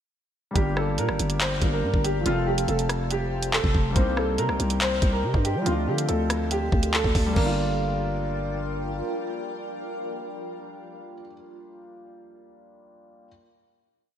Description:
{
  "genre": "hip hop, drill",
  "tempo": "141 BPM",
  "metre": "4/4",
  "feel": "half-time",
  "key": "G minor",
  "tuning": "A4 = 440 Hz",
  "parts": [
    { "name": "warm grand piano", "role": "accompaniment", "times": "0.5-13.3 s", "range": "F3 to Bb4", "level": "-32 LUFS", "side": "left 1 dB", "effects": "lush chorus, low-pass filter" },
    { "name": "warm upright piano", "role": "melody", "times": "0.6-8.6 s", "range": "F4 to C5", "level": "-29 LUFS", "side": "right 1 dB", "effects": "lush chorus, low-pass filter, ping-pong delay" },
    { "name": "granular cloud pad", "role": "sustained chords", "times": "1.6-11.2 s", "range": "F4 to C6", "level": "-35 LUFS", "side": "equal", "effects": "built-in reverb, wide subtle chorus" },
    { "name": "growling 808-style bass", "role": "bass", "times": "0.6-9.0 s", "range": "F1 to G3", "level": "-27 LUFS", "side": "equal", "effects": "none" },
    { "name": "drill drum kit", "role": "drums", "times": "0.6-7.5 s", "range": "crash cymbal, handclaps, hi-hat, kick drum, rim click", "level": "-25 LUFS", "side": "equal", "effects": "none" }
  ],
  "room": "moderate lush hall reverb, RT60 2.1 s",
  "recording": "bright 1980s-style digital production",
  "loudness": "-22 LUFS",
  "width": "side -9 dB against mid",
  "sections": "0.6-7.4 hook; 7.4-10.8 final chord",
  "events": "none",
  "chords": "0.6 Gm7; 2.3 F; 4.0 Cm7; 5.7 Dm7; 7.4 Gm7"
}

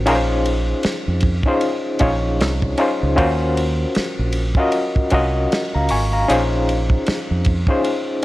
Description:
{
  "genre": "R&B, neo-soul",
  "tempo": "77 BPM",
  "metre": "4/4",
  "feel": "swing 58% on 16ths",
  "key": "Bb minor",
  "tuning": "A4 = 440 Hz",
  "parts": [
    { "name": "overdriven reed electric piano", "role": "accompaniment", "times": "0.0-8.2 s", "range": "Db4 to Db6", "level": "-19 LUFS", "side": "left 1 dB", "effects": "tremolo" },
    { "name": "fingered electric bass", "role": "bass", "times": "0.0-7.6 s", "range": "Ab1 to F2", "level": "-20 LUFS", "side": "right 1 dB", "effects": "none" },
    { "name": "warm soul drum kit", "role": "drums", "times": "0.1-8.2 s", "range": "hi-hat, kick drum, ride cymbal, snare drum", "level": "-23 LUFS", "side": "right 1 dB", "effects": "none" }
  ],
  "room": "light reverb",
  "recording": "none",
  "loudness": "-16 LUFS",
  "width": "side -17 dB against mid",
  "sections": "0.0-8.2 A section",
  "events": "none",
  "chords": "0.1 Bbm9; 3.2 Ebm7; 6.3 Bbm9"
}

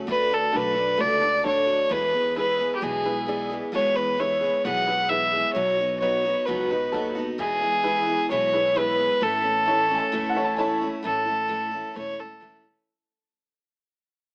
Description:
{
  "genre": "honky-tonk and classic country",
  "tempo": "131 BPM",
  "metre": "4/4",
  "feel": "straight",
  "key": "A major",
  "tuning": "A4 = 439 Hz",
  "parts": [
    { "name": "picked steel-string acoustic guitar", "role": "accompaniment", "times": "0.0-12.9 s", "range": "E2 to G#4", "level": "-33 LUFS", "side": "equal", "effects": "none" },
    { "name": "rich fiddle", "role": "melody", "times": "0.1-12.7 s", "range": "G4 to F#5", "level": "-25 LUFS", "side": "equal", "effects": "none" },
    { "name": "upright bass", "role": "bass", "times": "0.1-12.7 s", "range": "E1 to E2", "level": "-42 LUFS", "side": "equal", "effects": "none" },
    { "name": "tack piano", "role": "accompaniment", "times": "0.5-10.9 s", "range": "D4 to D5", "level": "-35 LUFS", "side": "equal", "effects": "none" },
    { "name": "bright upright piano", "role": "second line", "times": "9.9-10.8 s", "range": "F#5 to A5", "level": "-32 LUFS", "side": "equal", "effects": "none" }
  ],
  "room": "moderate plate reverb, RT60 2.5 s",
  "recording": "AM radio sound",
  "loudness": "-24 LUFS",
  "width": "mono",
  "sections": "0.0-11.0 A section; 11.0-12.9 B section",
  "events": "fade-out 11.0-12.9",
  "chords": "0.1 D; 1.9 E; 5.6 B; 7.4 E; 9.2 A"
}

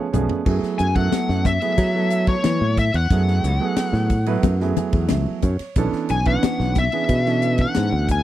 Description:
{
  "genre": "electric jazz fusion",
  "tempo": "91 BPM",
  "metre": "4/4",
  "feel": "straight",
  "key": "F# minor",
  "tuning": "A4 = 440 Hz",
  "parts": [
    { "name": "smooth overdriven lead guitar", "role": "melody", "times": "0.0-8.2 s", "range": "C#5 to G#5", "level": "-24 LUFS", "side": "left 3 dB", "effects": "none" },
    { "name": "warm grand piano", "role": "accompaniment", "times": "0.0-8.1 s", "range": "E3 to G#5", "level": "-24 LUFS", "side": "right 6 dB", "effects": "none" },
    { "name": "modern bright fingered electric bass", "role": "bass", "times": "0.1-8.2 s", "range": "Cb2 to F#3", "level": "-20 LUFS", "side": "equal", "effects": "none" },
    { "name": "tight funk drum kit", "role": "drums", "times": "0.1-8.2 s", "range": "crash cymbal, hi-hat, kick drum, ride cymbal, snare drum, toms", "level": "-23 LUFS", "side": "equal", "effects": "none" },
    { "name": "congas", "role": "percussion", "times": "0.1-7.9 s", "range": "none", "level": "-28 LUFS", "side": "left 14 dB", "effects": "none" }
  ],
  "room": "little or no reverb",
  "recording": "dry, close 1970s-style studio recording",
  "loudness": "-18 LUFS",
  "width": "side -13 dB against mid",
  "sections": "0.5-8.2 A section",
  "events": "drum fill 0.0-0.5; grand piano fill 0.0-0.5, 4.4-5.8",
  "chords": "0.5 F#m11; 5.8 Bm11"
}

